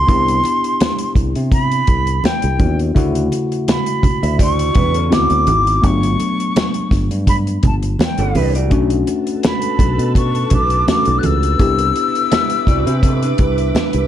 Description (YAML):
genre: lush 1970s-style soul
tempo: 83 BPM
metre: 4/4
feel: swing 54% on 16ths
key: unclear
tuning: A4 = 442 Hz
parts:
  - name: concert flute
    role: melody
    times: 0.0-13.4 s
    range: G5 to F#6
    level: -19 LUFS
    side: left 1 dB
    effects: none
  - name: tine electric piano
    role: accompaniment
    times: 0.0-14.1 s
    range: C#3 to G4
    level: -21 LUFS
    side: left 3 dB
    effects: wide subtle chorus
  - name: fingered electric bass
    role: bass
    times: 0.0-14.1 s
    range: G1 to C3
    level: -18 LUFS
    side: equal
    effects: none
  - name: modern studio drum kit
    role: drums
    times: 0.1-14.1 s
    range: hi-hat, kick drum, snare drum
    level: -18 LUFS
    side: equal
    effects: none
  - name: congas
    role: percussion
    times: 0.1-13.9 s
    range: none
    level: -24 LUFS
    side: right 3 dB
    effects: none
  - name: electric guitar through a small old amp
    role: riff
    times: 4.2-14.1 s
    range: C4 to E5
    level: -22 LUFS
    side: right 4 dB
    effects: none
  - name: soft string machine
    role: sustained chords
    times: 9.2-14.1 s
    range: A4 to D6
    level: -27 LUFS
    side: equal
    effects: ensemble chorus
room: light reverb, small room ambience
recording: dark, warm production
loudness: -13 LUFS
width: side -11 dB against mid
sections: 0.0-14.1 A section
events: none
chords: 0.1 Cmaj9; 3.0 Dmaj9; 5.1 D13; 5.8 Gmaj7; 8.7 Bm9; 11.6 Cmaj9